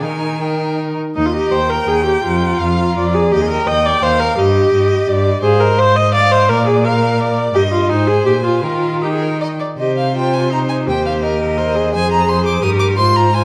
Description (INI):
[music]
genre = quick classical-period movement for string quartet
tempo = 169 BPM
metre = 3/4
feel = rubato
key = Eb major, C minor from 9.8 s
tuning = A4 = 440 Hz
[part]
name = rich violin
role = melody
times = 0.0-13.4 s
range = D5 to Eb6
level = -25 LUFS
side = equal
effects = none
[part]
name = clear violin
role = second line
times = 0.0-13.4 s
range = G4 to G5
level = -24 LUFS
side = equal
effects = none
[part]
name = clear viola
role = accompaniment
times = 0.0-13.4 s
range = Eb4 to Eb5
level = -18 LUFS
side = equal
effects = none
[part]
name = clear cello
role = bass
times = 0.0-13.4 s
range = Eb2 to Eb3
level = -21 LUFS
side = equal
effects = none
[sound]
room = wet recital hall reverb, RT60 1.7 s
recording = dark, warm production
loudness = -15 LUFS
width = mono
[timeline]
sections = 0.0-1.2 A section; 1.2-9.8 A section; 9.8-13.4 B section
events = none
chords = 0.0 Eb; 2.2 Bb/F; 3.3 Eb; 4.4 Eb/G; 5.4 Fm7/Ab; 6.5 Bb; 7.5 Eb/G; 7.9 Ab; 8.3 Bb5; 8.6 Eb; 9.8 Cm; 10.9 Cm/Eb; 11.9 Fm